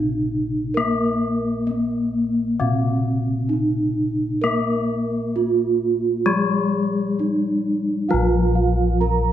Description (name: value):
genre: Javanese gamelan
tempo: 66 BPM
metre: 4/4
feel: straight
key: Bb slendro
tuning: A4 = 441 Hz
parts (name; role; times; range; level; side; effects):
- gamelan-type bronze metallophone; melody; 0.0-9.3 s; Bb3 to Bb4; -22 LUFS; right 2 dB; none
- gamelan-type bronze metallophone; accompaniment; 0.0-9.3 s; C3+30c to Bb3; -23 LUFS; left 3 dB; none
- gamelan-type bossed gongs; bass; 0.0-9.3 s; Bb1 to Bb4; -26 LUFS; left 1 dB; none
- gamelan-type bronze metallophone; arpeggios; 8.1-9.3 s; F5+25c to Bb5; -27 LUFS; right 9 dB; none
room: moderate recital hall reverb, RT60 1.6 s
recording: none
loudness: -19 LUFS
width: side -11 dB against mid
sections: 0.0-9.3 A section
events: none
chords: none